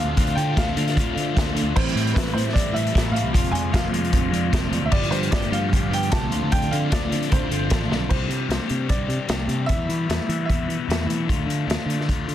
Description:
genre	indie rock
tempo	151 BPM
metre	4/4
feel	straight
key	C major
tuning	A4 = 440 Hz
part	clear upright piano	melody	0.0-11.0 s	B4 to A5	-30 LUFS	right 2 dB	none
part	bright tonewheel organ	sustained chords	0.0-8.1 s	F4 to C6	-37 LUFS	right 1 dB	slow rotary speaker, chorus vibrato
part	overdriven electric guitar	riff	0.0-12.3 s	E2 to G4	-28 LUFS	left 10 dB	phaser
part	twelve-string electric guitar	riff	0.0-8.1 s	F2 to A4	-30 LUFS	right 10 dB	wide subtle chorus
part	picked electric bass	bass	0.0-12.3 s	F1 to E3	-26 LUFS	equal	none
part	vintage drum kit	drums	0.2-12.3 s	crash cymbal, hi-hat, kick drum, snare drum	-23 LUFS	equal	none
room	little or no reverb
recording	dense, heavily limited modern master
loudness	-20 LUFS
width	side -11 dB against mid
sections	0.0-8.1 A section; 8.1-12.3 B section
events	drum fill 7.9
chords	0.0 Dm7; 1.7 Am7; 3.3 Fm6; 4.9 G7; 6.3 Dm7; 8.1 Csus2; 9.7 Em; 11.3 Dm

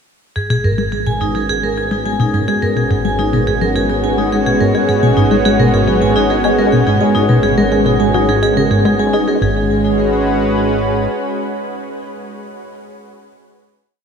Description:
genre	ambient, sequencer-driven space music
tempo	106 BPM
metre	4/4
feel	straight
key	G# minor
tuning	A4 = 440 Hz
part	lush unison pad	sustained chords	0.4-12.4 s	G#3 to B4	-17 LUFS	right 1 dB	chorus
part	vibraphone with hard mallets	arpeggios	0.4-9.7 s	D#4 to G#5	-18 LUFS	moving between left 2 dB and right 4 dB	auto-pan, ping-pong delay
part	tight sequenced synth	riff	0.4-9.7 s	G#2 to D#4	-17 LUFS	left 1 dB	chorus, ping-pong delay
part	fat analog bass	bass	0.4-11.1 s	G#1	-24 LUFS	equal	none
room	moderate huge ambient reverb, RT60 8.6 s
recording	none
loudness	-12 LUFS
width	side -6 dB against mid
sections	0.4-9.4 A section; 9.4-11.7 final chord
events	filter sweep on synth arpeggio sound 0.4-9.4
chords	0.4 G#m

